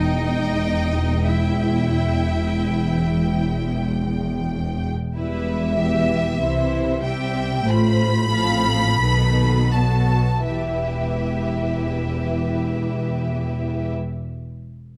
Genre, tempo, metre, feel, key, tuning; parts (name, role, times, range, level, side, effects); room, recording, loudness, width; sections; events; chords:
classical, slow romantic movement for string orchestra; 40-48 BPM; 4/4; rubato; E minor; A4 = 440 Hz
rich symphonic violin section; melody; 0.0-13.9 s; E5 to B5; -29 LUFS; equal
clear symphonic violin section; second line; 0.0-13.9 s; E4 to F5; -33 LUFS; equal
rich symphonic viola section; accompaniment; 0.0-13.9 s; D#3 to F4; -30 LUFS; equal
rich symphonic cello section; bass; 0.0-13.9 s; E2 to C3; -26 LUFS; equal
warm studio double bass section; bass; 0.0-13.9 s; E1 to C2; -27 LUFS; equal
moderate recital hall reverb, RT60 1.5 s; dark, warm production; -21 LUFS; mono
0.0-5.2 A section; 5.2-10.5 B section; 10.5-15.0 C section
slowing down 0.0-10.5
0.0 Em; 6.4 C; 7.7 F/A; 9.0 B7; 10.5 Em